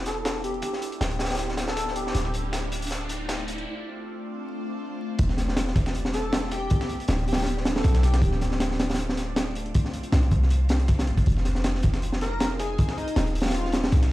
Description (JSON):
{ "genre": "drum and bass, jungle", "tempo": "158 BPM", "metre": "4/4", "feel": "swing 54% on 16ths", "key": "unclear", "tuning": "A4 = 440 Hz", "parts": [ { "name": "ethereal airy pad", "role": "sustained chords", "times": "0.0-14.1 s", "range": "A3 to Ab4", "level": "-35 LUFS", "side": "equal", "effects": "ensemble chorus, built-in reverb, phaser, vintage 12-bit sampler grit" }, { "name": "warm 808-style bass", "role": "bass", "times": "0.0-14.1 s", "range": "D1 to C2", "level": "-25 LUFS", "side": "equal", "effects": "none" }, { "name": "riser", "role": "sound effects", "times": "0.7-3.7 s", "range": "none", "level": "-40 LUFS", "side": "left 1 dB", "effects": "none" }, { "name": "airy dreamy lead", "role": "melody", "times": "0.1-2.2, 6.1-8.3, 12.2-13.7 s", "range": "Eb4 to A#4", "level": "-33 LUFS", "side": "left 1 dB", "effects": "chorus, dub echo" }, { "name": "crunchy breakbeat drum kit", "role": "drums", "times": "0.1-14.1 s", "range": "hi-hat, kick drum, snare drum", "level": "-26 LUFS", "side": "equal", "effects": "high-pass filter on kick, high-pass filter on hats, high-pass filter on snare, high-pass filter on room" }, { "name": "dusty soul sampler-style drum kit", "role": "drums", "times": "0.1-14.1 s", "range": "hi-hat, snare drum", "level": "-40 LUFS", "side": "equal", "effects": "high-pass filter on hats, high-pass filter on snare" } ], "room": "little or no reverb", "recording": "played on a big sound system in a bare room, large studio reverb, vinyl crackle", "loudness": "-23 LUFS", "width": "side -16 dB against mid", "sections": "0.0-5.2 A section; 5.2-14.1 B section", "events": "build-up 0.0-5.2; riser 0.7-3.7; drum fill 2.2-3.7; break 3.7-5.2; drop 5.2-14.1", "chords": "0.0 Em7; 2.2 Dm7; 5.2 Em7; 8.2 Dm7; 11.3 Fm7", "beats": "0.25 | 0.63 1.01 1.39 1.77 | 2.15 2.53 2.91 3.29 | 3.67 4.05 4.43 4.81 | 5.19 5.57 5.95 6.33 | 6.71 7.09 7.47 7.85 | 8.23 8.61 8.99 9.37 | 9.75 10.13 10.51 10.89 | 11.27 11.64 12.03 12.40 | 12.79 13.16 13.54 13.92" }